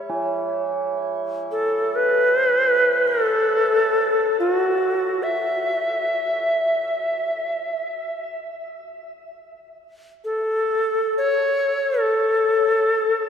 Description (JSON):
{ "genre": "world meditative, free-time meditation music", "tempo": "free time", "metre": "none", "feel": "none", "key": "unclear", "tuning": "A4 = 442 Hz", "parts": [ { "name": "tubular bells", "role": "texture", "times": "0.0-7.7 s", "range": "C#4 to E4", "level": "-29 LUFS", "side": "right 4 dB", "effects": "shimmer reverb" }, { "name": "bright reedy Native American-style cedar flute", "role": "melody", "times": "1.5-13.3 s", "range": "F#4 to E5", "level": "-19 LUFS", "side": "left 1 dB", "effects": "shimmer reverb" } ], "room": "wet cathedral reverb, RT60 5.9 s", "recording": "in a vast, echoing space", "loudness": "-19 LUFS", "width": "side -7 dB against mid", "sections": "0.0-13.3 A section", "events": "none", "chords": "none" }